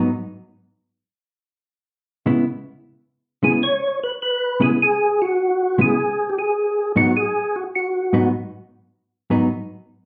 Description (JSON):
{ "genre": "jazz", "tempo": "102 BPM", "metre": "4/4", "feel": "swing 67% on 8ths", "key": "G# minor", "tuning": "A4 = 439 Hz", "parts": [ { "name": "hollow-body jazz guitar", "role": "accompaniment", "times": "0.0-9.5 s", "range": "G#2 to E4", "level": "-21 LUFS", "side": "equal", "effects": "none" }, { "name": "percussive tonewheel organ", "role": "melody", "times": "3.4-8.3 s", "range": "F#4 to C#5", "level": "-21 LUFS", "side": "equal", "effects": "slow rotary speaker, chorus vibrato" } ], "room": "wet large studio reverb, RT60 0.8 s", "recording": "band playing live in one room, lossy compression artefacts", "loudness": "-20 LUFS", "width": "mono", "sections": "0.0-10.1 A section", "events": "none", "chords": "0.0 G#m7" }